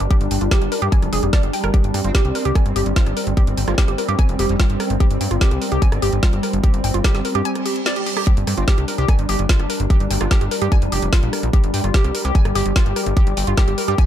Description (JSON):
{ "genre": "psychedelic trance", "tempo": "147 BPM", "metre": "4/4", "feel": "straight", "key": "G minor", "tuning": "A4 = 440 Hz", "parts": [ { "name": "pulsing gated texture", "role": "sustained chords", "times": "0.0-14.1 s", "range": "G3 to G4", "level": "-24 LUFS", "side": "left 1 dB", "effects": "chorus, built-in reverb, sidechain pumping" }, { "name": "woody wave-folded pluck", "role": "riff", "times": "0.0-14.0 s", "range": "F4 to Ab5", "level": "-25 LUFS", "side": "moving between left 3 dB and right 4 dB", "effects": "chorus, auto-pan, sidechain pumping, dub echo" }, { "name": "plucky analog bass", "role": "bass", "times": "0.0-14.0 s", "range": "F1 to G2", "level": "-21 LUFS", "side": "equal", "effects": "none" }, { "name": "drum and bass drum kit", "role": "drums", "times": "0.0-14.1 s", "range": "hi-hat, rim click, snare drum", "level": "-26 LUFS", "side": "equal", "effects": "none" }, { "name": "electronic kick drum", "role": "drums", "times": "0.1-14.1 s", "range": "none", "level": "-15 LUFS", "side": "equal", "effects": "none" }, { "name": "vowel-sweep wobble bass", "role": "second line", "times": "2.0-4.6, 8.6-10.3 s", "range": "G3 to C4", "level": "-39 LUFS", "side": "right 4 dB", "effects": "none" }, { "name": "reverse cymbal", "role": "sound effects", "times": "7.6-8.3 s", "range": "none", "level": "-29 LUFS", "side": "right 6 dB", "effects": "none" } ], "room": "little or no reverb", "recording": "dark, warm production", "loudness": "-16 LUFS", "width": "side -11 dB against mid", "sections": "0.0-8.3 A section; 8.3-14.1 B section", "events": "break 7.5-8.3; reverse cymbal 7.6-8.3; drop 8.3-14.1", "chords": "0.0 G5", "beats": "| 0.11 0.51 0.92 1.33 | 1.74 2.15 2.56 2.96 | 3.37 3.78 4.19 4.59 | 5.00 5.41 5.82 6.23 | 6.64 7.04 7.45 7.86 | 8.27 8.68 9.09 9.49 | 9.90 10.31 10.72 11.13 | 11.53 11.94 12.35 12.76 | 13.17 13.57 13.98" }